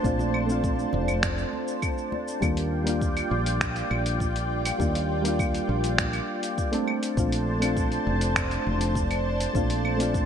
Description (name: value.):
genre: sunset chillout.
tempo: 101 BPM.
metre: 4/4.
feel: straight.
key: Eb lydian.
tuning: A4 = 440 Hz.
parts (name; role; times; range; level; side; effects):
soft electric-piano-like synth keys; accompaniment; 0.0-10.3 s; G3 to A4; -29 LUFS; equal; chorus, auto-pan, ping-pong delay.
lush unison pad; sustained chords; 0.0-10.3 s; D4 to A5; -30 LUFS; equal; chorus, phaser.
woody fretless electric bass; bass; 0.0-10.3 s; F1 to Eb2; -28 LUFS; equal; tube saturation.
dusty soul sampler-style drum kit; drums; 0.0-10.3 s; claves, finger snaps, hi-hat, shaker; -31 LUFS; equal; gated reverb.
electronic kick drum; drums; 0.0-10.3 s; none; -29 LUFS; equal; none.
congas; percussion; 0.2-2.2 s; none; -38 LUFS; right 2 dB; none.
room: moderate lush hall reverb, RT60 2.8 s.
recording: bright 1980s-style digital production.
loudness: -23 LUFS.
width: side -8 dB against mid.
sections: 0.0-2.4 A section; 2.4-10.3 B section.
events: filter sweep on synth keys 0.0-2.4.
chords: 0.0 Bbmaj9; 2.4 Ebmaj9; 6.9 Bbmaj9.